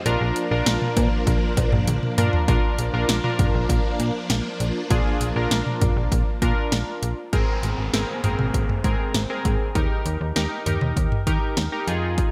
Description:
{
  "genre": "synth-pop",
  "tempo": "99 BPM",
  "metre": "4/4",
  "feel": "straight",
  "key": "unclear",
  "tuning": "A4 = 442 Hz",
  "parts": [
    { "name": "string machine, violins", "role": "sustained chords", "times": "0.0-7.3 s", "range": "F3 to D4", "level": "-31 LUFS", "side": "equal", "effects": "ensemble chorus" },
    { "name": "warm analog keys", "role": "accompaniment", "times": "0.1-12.3 s", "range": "C4 to Bb4", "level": "-29 LUFS", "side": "equal", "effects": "chorus" },
    { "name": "slap-like FM bass", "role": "bass", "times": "0.1-12.2 s", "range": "Ab1 to Eb3", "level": "-27 LUFS", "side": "equal", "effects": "none" },
    { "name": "house drum kit", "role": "drums", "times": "0.1-12.3 s", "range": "cowbell, hi-hat, kick drum, snare drum, toms", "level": "-25 LUFS", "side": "equal", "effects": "none" },
    { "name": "downlifter", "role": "sound effects", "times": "7.3-12.2 s", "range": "none", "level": "-38 LUFS", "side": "equal", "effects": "none" }
  ],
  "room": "moderate lush hall reverb, RT60 1.9 s",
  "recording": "bright 1980s-style digital production",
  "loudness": "-22 LUFS",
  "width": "mono",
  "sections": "0.0-2.5 A section; 2.5-7.3 B section; 7.3-12.3 C section",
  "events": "drum fill 1.9-2.5",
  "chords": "0.1 Bb; 7.3 Abadd9; 9.8 Eb"
}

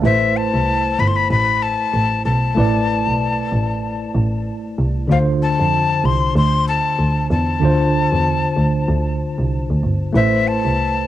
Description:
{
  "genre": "afrobeats",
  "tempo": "95 BPM",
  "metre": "4/4",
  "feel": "swing 58% on 16ths",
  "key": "A minor",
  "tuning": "A4 = 442 Hz",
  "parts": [
    { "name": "tine electric piano", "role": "accompaniment", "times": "0.0-11.1 s", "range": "D3 to D5", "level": "-20 LUFS", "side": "right 1 dB", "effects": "medium stereo tremolo" },
    { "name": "rich double bass", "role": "bass", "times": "0.0-11.0 s", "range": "G1 to F2", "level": "-19 LUFS", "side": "right 1 dB", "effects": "none" },
    { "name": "breathy bright jazz flute", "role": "melody", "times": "0.1-11.1 s", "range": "E5 to C6", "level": "-20 LUFS", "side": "left 6 dB", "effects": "cassette tape, tape echo" }
  ],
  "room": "moderate studio reverb, RT60 0.6 s",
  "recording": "home recording on cassette",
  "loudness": "-15 LUFS",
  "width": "side -13 dB against mid",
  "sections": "0.0-11.1 A section",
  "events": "none",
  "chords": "0.0 Amadd9; 5.1 Dm7; 10.2 Amadd9"
}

